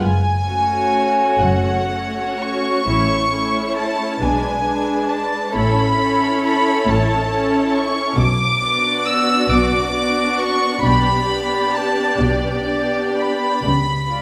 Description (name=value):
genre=classical, slow romantic movement for string orchestra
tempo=40-47 BPM (dotted quarters)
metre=6/8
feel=rubato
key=unclear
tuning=A4 = 440 Hz
part: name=warm symphonic violin section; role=melody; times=0.0-14.2 s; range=D5 to E6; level=-22 LUFS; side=equal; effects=none
part: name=dark studio cello section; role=bass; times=0.0-14.2 s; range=F#2 to C#3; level=-26 LUFS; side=equal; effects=none
part: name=dark symphonic double bass section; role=bass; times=0.0-14.2 s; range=F#1 to C#2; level=-26 LUFS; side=equal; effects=none
part: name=warm chamber violin section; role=second line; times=0.5-14.2 s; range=D4 to D5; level=-25 LUFS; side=equal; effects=none
part: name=dark symphonic viola section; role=accompaniment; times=0.5-14.2 s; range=G#3 to E4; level=-26 LUFS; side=equal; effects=none
room=wet recital hall reverb, RT60 1.5 s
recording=none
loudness=-18 LUFS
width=mono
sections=0.0-14.2 A section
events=none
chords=0.0 F#m; 2.9 A; 4.2 G#dim/B; 5.6 A; 8.2 Bm; 13.6 C#7b9